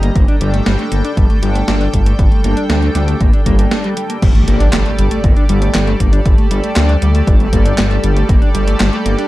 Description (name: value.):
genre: synthwave.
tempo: 118 BPM.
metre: 4/4.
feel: straight.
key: G minor.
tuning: A4 = 440 Hz.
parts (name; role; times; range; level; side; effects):
chorused pulse-width pad; sustained chords; 0.0-9.3 s; G3 to Bb5; -20 LUFS; equal; sidechain pumping.
mellow electric guitar; arpeggios; 0.0-9.2 s; G3 to D4; -21 LUFS; left 2 dB; analog chorus, tape echo.
wide detuned saw bass; bass; 0.0-9.2 s; G1 to D2; -14 LUFS; equal; chorus.
gated 80s digital drum machine; drums; 0.0-9.3 s; crash cymbal, handclaps, hi-hat, snare drum; -20 LUFS; right 1 dB; gated reverb, gated reverb snare.
electronic kick drum; drums; 0.2-8.4 s; none; -13 LUFS; equal; none.
impact; sound effects; 4.2-6.3 s; none; -20 LUFS; equal; none.
room: digital ambience.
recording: dark, warm production.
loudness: -11 LUFS.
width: side -17 dB against mid.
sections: 0.0-4.2 A section; 4.2-9.3 B section.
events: break 3.7-4.2; impact 4.2-6.3.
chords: 0.2 Gmadd9.